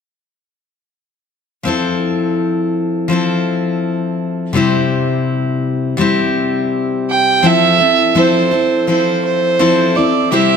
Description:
folk; 83 BPM; 4/4; straight; A4 = 440 Hz
picked steel-string acoustic guitar; accompaniment; 1.6-10.6 s; C3 to A4; -14 LUFS; left 3 dB
warm fiddle; melody; 7.1-10.6 s; C5 to G5; -13 LUFS; right 6 dB
moderate concert hall reverb, RT60 2.1 s; close, detailed microphones; -13 LUFS; side -6 dB against mid
1.6-7.4 A section; 7.4-10.6 B section
1.6 Fmaj7; 4.5 C; 7.4 Fmaj7

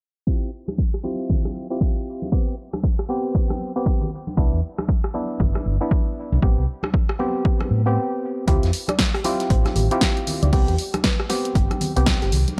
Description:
deep house; 117 BPM; 4/4; swing 60% on 16ths; A4 = 436 Hz
percussive organ stab; stabs; 0.3-12.3 s; B3 to G4; -29 LUFS; equal; chorus, sidechain pumping, analog delay
electronic kick drum; drums; 0.3-12.2 s; -23 LUFS; equal; overdrive
punchy analog drum machine; drums; 0.7-12.6 s; hi-hat, rim click, snare drum; -28 LUFS; equal; overdrive
congas; percussion; 0.7-12.6 s; -34 LUFS; equal
fingered electric bass; bass; 4.4-12.4 s; G1 to A2; -23 LUFS; equal; sidechain pumping
soft round pluck; arpeggios; 8.5-12.3 s; G4 to D5; -34 LUFS; equal; subtle chorus, sidechain pumping, analog delay
vintage drum kit; drums; 8.5-12.5 s; hi-hat, snare drum; -39 LUFS; equal
studio reverb; dry, gritty hardware recording, low-pass filter; -22 LUFS; mono
0.3-8.5 A section; 8.5-12.6 B section
filter sweep 0.3-8.5; break 8.0-8.5
0.3 Cadd11; 2.3 Gadd11/B; 4.1 Cmaj9 (rootless); 6.4 Am9; 8.5 Dm11; 10.5 Gadd11

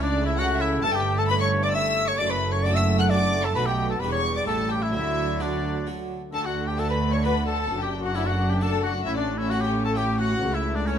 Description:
classical, baroque-style concerto movement with solo episodes; 132 BPM; 3/4; straight; D major; A4 = 440 Hz
mellow oboe; melody; 0.0-11.0 s; C#4 to F#5; -28 LUFS; left 2 dB
rich chamber violin section; melody; 0.0-11.0 s; C#5 to F#6; -31 LUFS; left 2 dB
warm chamber violin section; second line; 0.0-11.0 s; C#4 to F#6; -32 LUFS; left 3 dB
dark chamber viola section; accompaniment; 0.0-11.0 s; F#3 to D4; -32 LUFS; right 4 dB
harpsichord; accompaniment; 0.0-11.0 s; C#2 to G4; -34 LUFS; equal
warm chamber cello section; bass; 0.0-11.0 s; C#2 to D3; -28 LUFS; right 1 dB
warm studio double bass section; bass; 0.0-11.0 s; E1 to D2; -29 LUFS; right 2 dB
moderate recital hall reverb, RT60 1.5 s; close, detailed microphones; -22 LUFS; side -8 dB against mid
0.0-6.3 A section; 6.3-11.0 A section
0.0 A/C#; 0.8 A7/G; 2.2 D/F#; 3.6 B7; 4.0 Em7; 4.5 A7; 4.9 D; 7.7 D/F#; 9.1 A; 10.4 A/C#

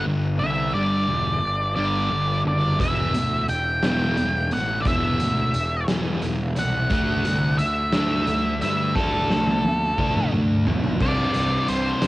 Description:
indie rock; 58 BPM (dotted quarters); 6/8; straight; G major; A4 = 440 Hz
octave-fuzz lead guitar; melody; 0.0-12.1 s; A4 to G5; -25 LUFS; equal; distortion, cassette tape
thick fuzz guitar; riff; 0.0-12.1 s; E2 to G4; -24 LUFS; equal; distortion, cassette tape
fuzz picked electric bass; bass; 0.0-12.1 s; E1 to G2; -27 LUFS; equal; overdrive
raw garage drum kit; drums; 2.8-12.1 s; crash cymbal, hi-hat, kick drum, snare drum, toms; -26 LUFS; equal; cassette tape
little or no reverb; home recording on cassette; -20 LUFS; side -18 dB against mid
0.0-11.0 A section; 11.0-12.1 B section
drum fill 9.0-11.0
0.0 G5; 2.8 Em; 6.9 Dsus2; 11.0 Csus2

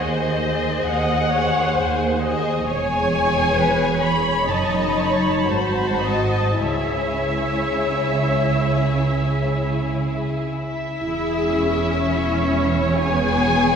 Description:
classical, slow romantic movement for string orchestra; 52-69 BPM; 4/4; rubato; C# minor; A4 = 439 Hz
warm studio violin section; melody; 0.0-13.8 s; C#5 to B5; -24 LUFS; left 3 dB
rich studio violin section; second line; 0.0-13.8 s; D#4 to C#5; -25 LUFS; left 3 dB
warm studio viola section; accompaniment; 0.0-13.8 s; B3 to E5; -24 LUFS; right 1 dB
warm studio cello section; bass; 0.0-13.8 s; D#2 to C#3; -25 LUFS; right 3 dB
warm studio double bass section; bass; 0.0-13.8 s; E1 to D#2; -27 LUFS; right 3 dB
wet concert hall reverb, RT60 2.2 s; heard from further back in the room; -18 LUFS; side -7 dB against mid
0.0-11.0 A section; 11.0-13.8 B section
0.0 G#7/D#; 2.7 C#m/E; 4.5 F#m6; 5.5 G#7b9; 6.6 C#m; 11.0 E

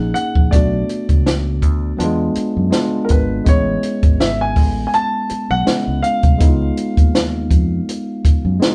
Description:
lush 1970s-style soul; 82 BPM; 4/4; swing 54% on 16ths; A4 = 440 Hz
warm concert grand piano; melody; 0.0-8.6 s; A#4 to A5; -23 LUFS; equal
tine electric piano; accompaniment; 0.0-8.7 s; F#3 to G#4; -23 LUFS; equal
fingered electric bass; bass; 0.0-8.6 s; G#1 to F#2; -23 LUFS; equal
compact cocktail drum kit; drums; 0.2-8.7 s; hi-hat, kick drum, snare drum; -17 LUFS; equal; vintage 12-bit sampler grit
light reverb; band playing live in one room; -16 LUFS; mono
0.0-8.7 A section
0.0 F#69; 0.5 Bm7; 2.0 E7b9; 3.5 Amaj9; 6.4 C#9

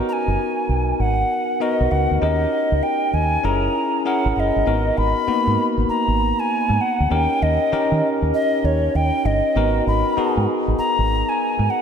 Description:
R&B, new jack swing; 98 BPM; 4/4; swing 64% on 16ths; G# minor; A4 = 442 Hz
bell-like tine electric piano; accompaniment; 0.0-11.8 s; A#3 to A#4; -22 LUFS; left 1 dB; auto-pan
bright alto ocarina; melody; 0.1-11.8 s; C#5 to B5; -21 LUFS; equal
deep dub fingered electric bass; bass; 0.3-11.7 s; F#1 to D#3; -21 LUFS; right 1 dB
wet lush hall reverb, RT60 3.0 s; dreamy mix soaked in reverb; -17 LUFS; side -7 dB against mid
0.0-4.7 A section; 4.7-11.8 B section
0.0 G#m7; 2.2 D#7; 3.4 F#7; 4.7 G#m7; 7.1 D#7; 9.6 G#m7

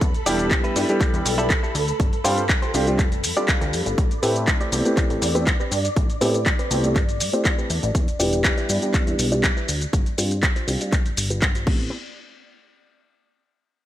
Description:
filtered disco house; 121 BPM; 4/4; straight; A minor; A4 = 442 Hz
string machine, full ensemble; sustained chords; 0.0-11.7 s; A4 to D6; -30 LUFS; equal; phaser, ensemble chorus, sidechain pumping, low-pass filter
plucky analog bass; bass; 0.0-11.9 s; E1 to A2; -27 LUFS; equal; tube saturation, sidechain pumping, low-pass filter
electronic kick drum; drums; 0.0-11.8 s; -21 LUFS; equal; overdrive
punchy analog drum machine; drums; 0.0-11.8 s; crash cymbal, handclaps, hi-hat, shaker; -25 LUFS; equal; sidechain pumping on hats, sidechain pumping on cymbals, sidechain pumping on perc
warm grand piano; accompaniment; 0.3-11.9 s; G3 to B4; -25 LUFS; equal; phaser, sidechain pumping, low-pass filter
direct-recorded clean electric guitar; riff; 0.3-11.9 s; C4 to D5; -28 LUFS; equal; vintage 12-bit sampler grit, sidechain pumping, low-pass filter
light reverb; -19 LUFS; side -13 dB against mid
0.0-11.9 A section; 11.9-13.9 B section
filter sweep 0.0-11.9
0.0 Em7; 2.0 G7sus4; 4.0 Am9; 7.9 Em7; 9.9 G7sus4; 11.7 Am9; 11.9 N.C.

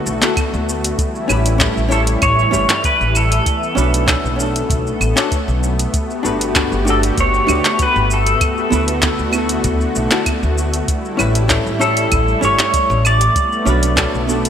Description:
sunset chillout; 97 BPM; 4/4; straight; D major; A4 = 440 Hz
pedal steel guitar; melody; 0.0-14.5 s; A4 to D5; -19 LUFS; left 1 dB; analog chorus, ping-pong delay
vintage hollow-body jazz guitar; accompaniment; 0.0-14.5 s; B3 to D5; -22 LUFS; moving between left 4 dB and right 5 dB; auto-pan, digital delay
lush unison pad; sustained chords; 0.0-14.5 s; D3 to G4; -22 LUFS; equal; chorus
upright bass; bass; 0.1-14.5 s; G1 to D2; -19 LUFS; equal
deep house drum kit; drums; 0.1-14.5 s; claves, handclaps, hi-hat, shaker; -20 LUFS; equal
electronic kick drum; drums; 0.4-14.1 s; -20 LUFS; equal
moderate lush hall reverb, RT60 2.8 s; bright 1980s-style digital production; -13 LUFS; side -8 dB against mid
0.0-14.5 A section
0.0 D6; 1.0 A7; 3.5 Bm9; 5.9 Gmaj9; 8.4 D6; 10.9 A7; 13.4 Bm9

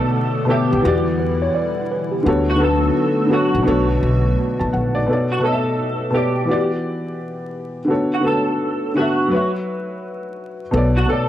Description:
lo-fi hip hop; 85 BPM; 4/4; swing 63% on 16ths; B minor; A4 = 441 Hz
electric guitar through a small old amp; melody; 0.0-11.3 s; F#4 to A4; -23 LUFS; equal; ensemble chorus, analog delay
dark upright piano; accompaniment; 0.0-11.3 s; B2 to A5; -19 LUFS; left 1 dB; cassette tape
hollow soft pad; sustained chords; 0.0-5.1 s; D3 to F#5; -24 LUFS; equal; ensemble chorus
upright bass; bass; 0.7-5.0, 10.7-11.0 s; A1 to E2; -21 LUFS; equal; transformer saturation
mellow tine electric piano; second line; 1.2-2.5 s; G4 to D5; -24 LUFS; right 1 dB; medium stereo tremolo, analog delay
light reverb; dry, gritty hardware recording, vinyl crackle; -16 LUFS; side -12 dB against mid
0.0-5.1 A section; 5.1-11.3 B section
0.0 Bm7; 0.8 Em7; 2.3 Bm7/D; 3.7 Bm7; 6.5 Em7; 7.9 Bm7/D; 9.3 F#7sus4; 10.7 Bm7

